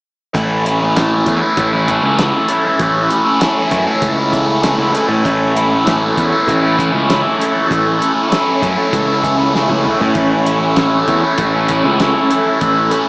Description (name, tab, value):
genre	psychedelic rock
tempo	98 BPM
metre	4/4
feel	straight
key	A major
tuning	A4 = 439 Hz
part	shimmering ambient pad	sustained chords	1.2-13.1 s	C#4 to C#6	-20 LUFS	equal	chorus, built-in reverb
part	overdriven electric guitar	riff	0.3-13.1 s	A2 to E4	-14 LUFS	equal	phaser
part	fuzz picked electric bass	bass	0.3-12.9 s	A1 to A2	-18 LUFS	equal	overdrive
part	cloth-damped thuddy drum kit	drums	0.3-13.1 s	hi-hat, kick drum, snare drum, toms	-21 LUFS	equal	none
room	wet lush hall reverb, RT60 2.6 s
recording	dreamy mix soaked in reverb, small speaker sound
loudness	-12 LUFS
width	side -33 dB against mid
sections	0.3-13.1 A section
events	drum fill 9.5-10.2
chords	0.3 A